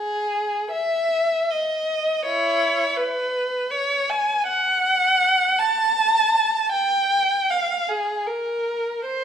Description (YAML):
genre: classical, free, expressive piece for unaccompanied violin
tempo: 79 BPM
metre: 3/4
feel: uneven beats, rubato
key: C# minor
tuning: A4 = 443 Hz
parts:
  - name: rich violin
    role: solo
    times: 0.0-9.2 s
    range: E4 to A5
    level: -19 LUFS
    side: equal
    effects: none
room: wet stone room reverb, RT60 1.2 s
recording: none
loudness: -19 LUFS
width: side -8 dB against mid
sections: 0.0-9.2 A section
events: none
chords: none